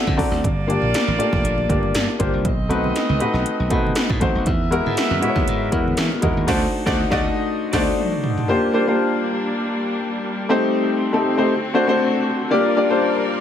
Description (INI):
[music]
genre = polished 1980s jazz-funk pop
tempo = 119 BPM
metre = 4/4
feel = swing 54% on 16ths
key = unclear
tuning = A4 = 440 Hz
[part]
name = clear horn section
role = second line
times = 0.0-7.9 s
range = A3 to E5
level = -27 LUFS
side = right 2 dB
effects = none
[part]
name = warm grand piano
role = accompaniment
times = 0.0-13.4 s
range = G#3 to Bb5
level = -19 LUFS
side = left 2 dB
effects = wide subtle chorus
[part]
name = slap bass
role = bass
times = 0.1-7.9 s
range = F1 to E3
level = -23 LUFS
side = right 1 dB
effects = none
[part]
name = 80s electronic pad drums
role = drums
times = 0.1-8.5 s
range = crash cymbal, hi-hat, kick drum, snare drum, toms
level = -23 LUFS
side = right 1 dB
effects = gated reverb on snare and toms, overdrive, gated reverb
[part]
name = congas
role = percussion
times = 0.2-6.4 s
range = none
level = -31 LUFS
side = right 4 dB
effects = none
[part]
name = rich studio string section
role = sustained chords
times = 8.5-13.4 s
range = D3 to D5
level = -26 LUFS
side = equal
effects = none
[sound]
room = light reverb, small room ambience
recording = none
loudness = -17 LUFS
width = side -9 dB against mid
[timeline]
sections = 0.0-8.5 A section; 8.5-13.4 B section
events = grand piano fill 0.0-0.4, 7.7-8.5; band accent 6.5-8.5; drum fill 7.5-8.5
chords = 0.4 Gm7; 2.5 B7b9; 4.5 Emaj9#11; 6.5 D7b9; 8.5 Bb69; 10.5 Am7b5; 11.5 D7; 12.5 Gm7